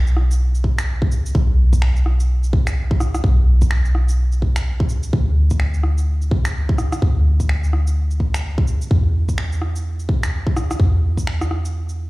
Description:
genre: future garage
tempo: 127 BPM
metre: 4/4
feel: swing 60% on 16ths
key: B minor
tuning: A4 = 440 Hz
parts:
  - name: soft 808-style bass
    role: bass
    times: 0.0-12.1 s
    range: B1 to E2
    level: -17 LUFS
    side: equal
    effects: tube saturation, sidechain pumping
  - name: electronic shaker, rim click and finger snaps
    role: drums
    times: 0.1-12.0 s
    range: none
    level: -28 LUFS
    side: equal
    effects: none
  - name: electronic kick drum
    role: drums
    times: 0.6-11.3 s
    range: none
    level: -18 LUFS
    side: equal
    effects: none
room: digital ambience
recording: played on a big sound system in a bare room, large studio reverb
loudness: -16 LUFS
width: side -21 dB against mid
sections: 0.0-12.1 A section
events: break 11.7-12.1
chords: none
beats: 0.41 0.88 | 1.35 1.82 2.29 2.77 | 3.24 3.71 4.18 4.66 | 5.13 5.60 6.08 6.55 | 7.02 7.49 7.96 8.44 | 8.91 9.38 9.86 10.33 | 10.80 11.27 11.74

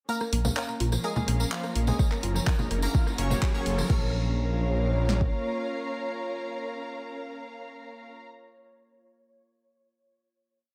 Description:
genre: melodic techno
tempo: 126 BPM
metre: 4/4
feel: straight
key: Bb minor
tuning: A4 = 439 Hz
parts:
  - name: resonant sweep polysynth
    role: melody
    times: 0.1-8.1 s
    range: F3 to Db5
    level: -38 LUFS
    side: equal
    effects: analog chorus, sidechain pumping, analog delay
  - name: glassy wavetable pluck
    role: second line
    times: 0.1-8.1 s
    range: F5 to Db6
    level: -43 LUFS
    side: equal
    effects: chorus, sidechain pumping, dub echo
  - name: evolving wavetable pad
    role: sustained chords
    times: 0.7-8.1 s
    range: F3 to Db5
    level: -42 LUFS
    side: equal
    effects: chorus, built-in reverb, sidechain pumping
  - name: analog pluck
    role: arpeggios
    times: 0.1-4.1 s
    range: F3 to Db5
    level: -37 LUFS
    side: equal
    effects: chorus, sidechain pumping, analog delay
  - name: tambourine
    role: percussion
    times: 0.1-3.9 s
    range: none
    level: -41 LUFS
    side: equal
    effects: dub echo
  - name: riser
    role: sound effects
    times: 2.4-3.9 s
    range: none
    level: -44 LUFS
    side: equal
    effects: none
  - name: dark studio string section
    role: texture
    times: 0.1-8.3 s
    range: Db4 to Bb5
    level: -41 LUFS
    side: equal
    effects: sidechain pumping
  - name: deep house drum kit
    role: drums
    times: 0.2-4.0 s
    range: congas, crash cymbal, handclaps, hi-hat, rim click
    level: -36 LUFS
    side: equal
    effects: overdrive
  - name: swelling detuned saw bass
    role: bass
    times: 0.3-5.3 s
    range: Gb1 to Bb1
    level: -29 LUFS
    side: equal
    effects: tube saturation, sidechain pumping
  - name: deep house drum kit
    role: drums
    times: 2.0-5.3 s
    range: kick drum, snare drum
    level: -27 LUFS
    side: equal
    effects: overdrive
room: light reverb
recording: echo-heavy mix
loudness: -28 LUFS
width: mono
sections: 0.1-3.9 build; 3.9-7.7 final chord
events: build-up 0.1-3.9; filter sweep on synth pluck 0.1-3.9; riser 2.4-3.9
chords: 0.1 Bbm; 2.0 Gb; 3.9 Bbm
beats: | 0.09 0.56 1.04 1.52 | 1.99 2.47 2.95 3.42 | 3.90 4.37 4.85 5.33 | 5.80 6.28 6.75 7.23

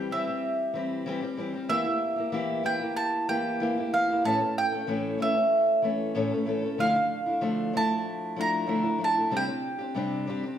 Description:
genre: acoustic folk duo or small band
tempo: 94 BPM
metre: 4/4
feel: straight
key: D minor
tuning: A4 = 443 Hz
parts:
  - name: mandolin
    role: melody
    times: 0.0-10.6 s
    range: E5 to Bb5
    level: -27 LUFS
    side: right 1 dB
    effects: none
  - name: picked steel-string acoustic guitar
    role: accompaniment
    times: 0.0-10.6 s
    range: A2 to A4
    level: -29 LUFS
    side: left 1 dB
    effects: none
room: wet large studio reverb, RT60 1.4 s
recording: band playing live in one room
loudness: -25 LUFS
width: side -9 dB against mid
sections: 0.0-10.6 A section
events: none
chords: 0.0 C/E; 1.7 Edim; 4.2 A; 6.8 Dmadd9; 9.3 Csus2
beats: 0.43 1.07 | 1.70 2.34 2.98 3.61 | 4.25 4.88 5.52 6.16 | 6.79 7.43 8.06 8.70 | 9.33 9.96

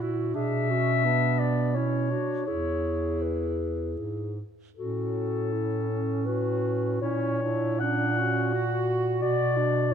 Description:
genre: classical, lyrical piece for single-reed quartet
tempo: 73-89 BPM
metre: 3/4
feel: rubato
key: A major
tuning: A4 = 440 Hz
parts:
  - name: mellow alto saxophone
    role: second line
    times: 0.0-9.9 s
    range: B3 to F#4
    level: -32 LUFS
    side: right 9 dB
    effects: none
  - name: dark clarinet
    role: accompaniment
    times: 0.0-9.9 s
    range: C#4 to G#4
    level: -32 LUFS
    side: left 5 dB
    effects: none
  - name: warm bass clarinet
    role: bass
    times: 0.0-9.9 s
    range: E2 to B2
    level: -29 LUFS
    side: right 2 dB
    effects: none
  - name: dark clarinet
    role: melody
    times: 0.4-9.9 s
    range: A4 to F#5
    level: -29 LUFS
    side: left 6 dB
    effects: none
room: moderate concert hall reverb, RT60 1.9 s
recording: close, detailed microphones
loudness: -24 LUFS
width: side -8 dB against mid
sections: 0.0-9.9 A section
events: none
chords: 0.3 Bm; 2.5 E; 4.8 A; 7.0 F#7/A#; 9.2 Bm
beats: | 0.35 1.04 1.74 | 2.46 3.22 3.98 | 4.77 5.52 6.26 | 7.01 7.80 8.52 | 9.22 9.93

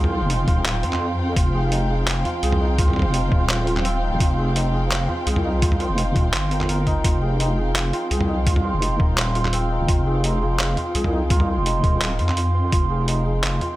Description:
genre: half-time drum and bass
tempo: 169 BPM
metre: 4/4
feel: swing 54% on 16ths, half-time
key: F minor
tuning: A4 = 440 Hz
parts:
  - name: dark studio string section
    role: sustained chords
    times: 0.0-13.8 s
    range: F3 to G5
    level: -29 LUFS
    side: equal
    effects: vintage 12-bit sampler grit, sidechain pumping
  - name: santur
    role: arpeggios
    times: 0.0-13.8 s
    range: C4 to F5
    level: -25 LUFS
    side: right 2 dB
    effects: digital delay
  - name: deep soft wobble bass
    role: bass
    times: 0.0-13.6 s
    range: Eb1 to F2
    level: -22 LUFS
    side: equal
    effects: chorus
  - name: boom bap sampler-style drum kit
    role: drums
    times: 0.0-13.7 s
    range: handclaps, hi-hat, toms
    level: -25 LUFS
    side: equal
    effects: none
  - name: electronic kick drum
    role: drums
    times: 0.5-12.8 s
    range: none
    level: -20 LUFS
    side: equal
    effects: none
room: light reverb, digital ambience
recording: none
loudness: -18 LUFS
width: side -16 dB against mid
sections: 0.0-13.8 A section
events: none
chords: 0.0 F5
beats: 0.30 0.66 1.01 | 1.36 1.72 2.08 2.43 | 2.79 3.14 3.50 3.85 | 4.21 4.56 4.92 5.27 | 5.62 5.98 6.33 6.69 | 7.04 7.40 7.75 8.11 | 8.46 8.82 9.18 9.53 | 9.88 10.24 10.60 10.95 | 11.31 11.66 12.02 12.37 | 12.73 13.08 13.44

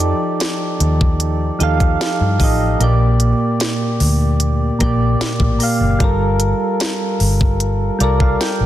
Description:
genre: contemporary R&B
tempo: 75 BPM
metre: 4/4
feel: straight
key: unclear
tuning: A4 = 440 Hz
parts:
  - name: soft electric-piano-like synth keys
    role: accompaniment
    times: 0.0-8.7 s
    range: Bb2 to G5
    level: -18 LUFS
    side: right 1 dB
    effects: chorus, tremolo
  - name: vintage muted fingered electric bass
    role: bass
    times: 0.0-8.7 s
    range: F#1 to G2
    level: -17 LUFS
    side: equal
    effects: none
  - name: trap drum kit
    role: drums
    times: 0.0-8.6 s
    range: hi-hat, kick drum, snare drum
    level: -19 LUFS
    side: equal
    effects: none
room: digital ambience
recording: dense, heavily limited modern master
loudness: -14 LUFS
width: side -13 dB against mid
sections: 0.0-8.7 A section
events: kick muted 2.8-4.4; synth keys fill 7.6-8.7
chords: 0.0 F13; 2.8 Bb6; 6.0 Gm9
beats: 0.40 1.20 2.00 | 2.80 3.60 4.40 5.20 | 6.00 6.80 7.60 8.40

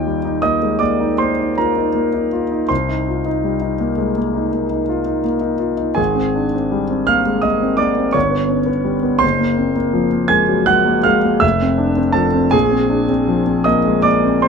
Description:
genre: classical, impressionist solo piano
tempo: 55 BPM (dotted quarters)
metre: 9/8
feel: uneven beats, rubato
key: unclear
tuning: A4 = 444 Hz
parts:
  - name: warm concert grand piano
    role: solo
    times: 0.0-14.5 s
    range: F1 to Ab6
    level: -14 LUFS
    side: equal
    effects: none
room: light reverb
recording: none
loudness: -14 LUFS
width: side -6 dB against mid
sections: 0.0-14.5 A section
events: none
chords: 0.0 Ebadd9; 2.7 Cm7; 6.0 Abmaj9; 8.2 G; 9.2 Gbmaj9; 11.4 Fmaj7; 12.5 Bb11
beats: 0.44 1.58 | 2.70 3.81 4.91 | 5.99 7.09 8.15 | 9.23 10.32 11.43 | 12.54 13.68

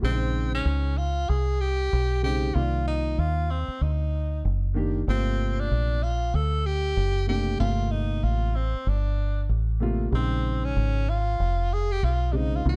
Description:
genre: hip hop, jazz-hop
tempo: 95 BPM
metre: 4/4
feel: swing 59% on 16ths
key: unclear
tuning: A4 = 440 Hz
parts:
  - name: breathy tenor saxophone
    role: melody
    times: 0.0-12.8 s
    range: C4 to A4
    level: -32 LUFS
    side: equal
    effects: slapback echo
  - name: dark upright piano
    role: accompaniment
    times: 0.0-12.8 s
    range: C3 to D5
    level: -33 LUFS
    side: equal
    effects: none
  - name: deep dub fingered electric bass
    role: bass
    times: 0.0-12.8 s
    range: F1 to Eb2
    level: -27 LUFS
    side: equal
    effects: none
room: small room ambience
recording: dark, warm production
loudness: -26 LUFS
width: mono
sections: 0.0-12.8 A section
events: none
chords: 0.0 Bbm11; 2.6 Cm11; 5.1 Gm11; 10.1 Bbm11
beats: | 0.02 0.66 1.29 1.92 | 2.55 3.18 3.81 4.45 | 5.08 5.71 6.34 6.97 | 7.60 8.23 8.87 9.50 | 10.13 10.76 11.39 12.02 | 12.66

